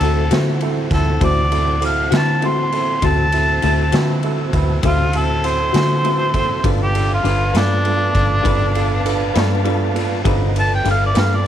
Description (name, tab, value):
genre	slow blues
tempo	66 BPM (dotted quarters)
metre	12/8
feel	straight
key	D mixolydian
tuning	A4 = 438 Hz
part	mellow harmonica	melody	0.0-11.5 s	D4 to C6	-20 LUFS	equal	overdrive
part	clear upright piano	accompaniment	0.0-11.4 s	B3 to C5	-25 LUFS	right 12 dB	none
part	electric guitar through a small old amp	accompaniment	0.0-11.3 s	D3 to B4	-25 LUFS	left 14 dB	tremolo
part	tonewheel organ	sustained chords	0.0-11.5 s	E3 to E5	-27 LUFS	left 1 dB	fast rotary speaker
part	vintage muted fingered electric bass	bass	0.0-11.5 s	G1 to D3	-19 LUFS	equal	none
part	raw garage drum kit	drums	0.0-11.3 s	kick drum, ride cymbal, snare drum	-22 LUFS	equal	none
room	light reverb, studio reverb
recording	1960s-style stereo with parts hard left and right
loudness	-14 LUFS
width	side -10 dB against mid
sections	0.0-11.5 A section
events	harmonica solo 0.0-11.5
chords	0.0 D7; 6.6 G7